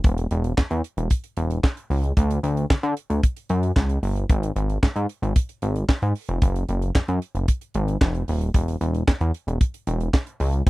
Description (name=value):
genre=early-eighties boogie funk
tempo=113 BPM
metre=4/4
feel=straight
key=unclear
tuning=A4 = 437 Hz
part: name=chorused synth bass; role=bass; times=0.0-10.7 s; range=D#1 to D3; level=-22 LUFS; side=equal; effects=none
part: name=tight funk drum kit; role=drums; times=0.0-10.7 s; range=handclaps, hi-hat, kick drum, snare drum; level=-19 LUFS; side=equal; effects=none
room=little or no reverb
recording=dry, close 1970s-style studio recording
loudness=-21 LUFS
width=side -19 dB against mid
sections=0.0-10.7 A section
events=none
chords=none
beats=| 0.05 0.58 1.11 1.64 | 2.17 2.70 3.23 3.76 | 4.29 4.83 5.36 5.89 | 6.42 6.95 7.48 8.01 | 8.54 9.07 9.60 10.13 | 10.67